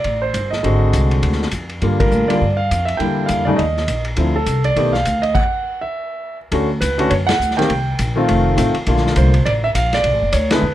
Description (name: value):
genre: jazz piano trio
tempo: 204 BPM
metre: 4/4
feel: swing 60% on 8ths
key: D minor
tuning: A4 = 442 Hz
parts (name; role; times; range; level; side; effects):
- warm concert grand piano; melody; 0.0-10.7 s; C#3 to G5; -18 LUFS; equal; none
- upright bass; bass; 0.0-10.7 s; F1 to A2; -19 LUFS; equal; none
- vintage drum kit; drums; 0.0-10.6 s; crash cymbal, hi-hat, kick drum, ride cymbal, snare drum; -24 LUFS; left 1 dB; none
room: light reverb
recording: none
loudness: -15 LUFS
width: side -13 dB against mid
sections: 0.0-6.5 A section; 6.5-10.7 B section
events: band accent 2.0, 7.3, 10.5; stop 5.3-6.5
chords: 0.0 Am7; 0.6 G#7#11; 1.8 Gm7; 3.0 Em7b5; 3.6 Eb5; 4.2 Dm9; 4.8 B7alt; 5.3 N.C.; 6.5 Dmaj7; 7.7 Cm7; 8.3 F7; 8.9 Bbmaj7; 10.0 Bm7